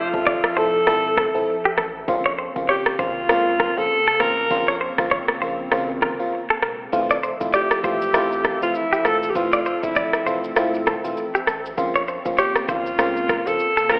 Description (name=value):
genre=afrobeats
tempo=99 BPM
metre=4/4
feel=swing 58% on 16ths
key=F major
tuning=A4 = 438 Hz
part: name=breathy alto saxophone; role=melody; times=0.0-14.0 s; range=E4 to Bb4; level=-22 LUFS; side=equal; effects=digital delay
part: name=hollow soft pad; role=sustained chords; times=0.0-14.0 s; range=Db3 to E5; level=-33 LUFS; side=equal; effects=ensemble chorus
part: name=direct-recorded clean electric guitar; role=riff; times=0.0-14.0 s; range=G4 to D5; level=-23 LUFS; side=equal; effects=tremolo, digital delay
part: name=saturated sub bass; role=bass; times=0.0-14.0 s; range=E1 to Db2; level=-41 LUFS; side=equal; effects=none
part: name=FM electric piano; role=accompaniment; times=0.1-14.0 s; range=Db3 to E5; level=-24 LUFS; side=equal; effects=chorus
part: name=afro-pop drum kit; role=drums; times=0.1-14.0 s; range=kick drum, rim click, shaker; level=-23 LUFS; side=equal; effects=none
room=moderate plate reverb, RT60 3.7 s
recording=played on a big sound system in a bare room, large studio reverb, telephone sound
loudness=-18 LUFS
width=side -31 dB against mid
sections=0.0-14.0 A section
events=break 0.0-6.9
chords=0.0 Fmaj7; 2.1 Bbmadd9; 6.9 Fmaj7; 11.8 Bbmadd9